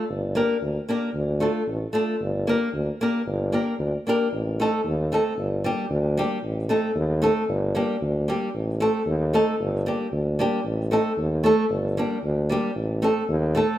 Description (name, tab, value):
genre	balkan folk, Balkan wedding band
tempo	114 BPM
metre	2/4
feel	swing 54% on 16ths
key	G minor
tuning	A4 = 440 Hz
part	flamenco guitar	accompaniment	0.0-13.8 s	G3 to Bb4	-23 LUFS	equal	none
part	warm tuba	bass	0.1-13.6 s	G1 to Eb2	-25 LUFS	equal	none
room	moderate recital hall reverb, RT60 1.7 s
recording	none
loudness	-22 LUFS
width	side -13 dB against mid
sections	0.0-4.3 A section; 4.3-12.8 B section; 12.8-13.8 B section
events	none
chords	0.1 Gm; 1.2 Dm; 2.2 Gm; 4.3 Adim; 5.4 Gm; 6.4 Adim; 7.5 Gm; 8.5 Adim; 9.6 Gm; 10.6 Adim; 11.7 Gm; 12.8 Adim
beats	| 0.10 0.63 | 1.15 1.68 | 2.21 2.74 | 3.27 3.79 | 4.32 4.85 | 5.38 5.90 | 6.43 6.96 | 7.49 8.01 | 8.54 9.07 | 9.59 10.12 | 10.65 11.17 | 11.70 12.23 | 12.75 13.28